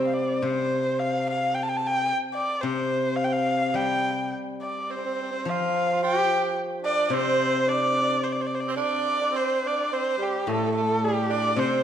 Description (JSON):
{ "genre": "chinese traditional, Chinese chamber ensemble", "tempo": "108 BPM", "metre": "2/4", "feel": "rubato", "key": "C zhi mode", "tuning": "A4 = 441 Hz", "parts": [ { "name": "rich erhu", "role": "melody", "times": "0.0-11.8 s", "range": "G4 to A5", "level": "-26 LUFS", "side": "left 1 dB", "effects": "none" }, { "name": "growling tenor saxophone", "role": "second line", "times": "0.0-0.1, 4.9-11.8 s", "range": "G3 to G4", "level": "-28 LUFS", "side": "right 5 dB", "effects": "none" }, { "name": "steel-string zither", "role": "accompaniment", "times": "0.0-11.8 s", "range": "A2 to C4", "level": "-27 LUFS", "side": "left 1 dB", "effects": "none" } ], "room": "wet recital hall reverb, RT60 1.5 s", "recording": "dark, warm production", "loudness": "-23 LUFS", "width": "side -9 dB against mid", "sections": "0.4-9.3 A section; 9.3-11.8 B section", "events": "none", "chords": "none" }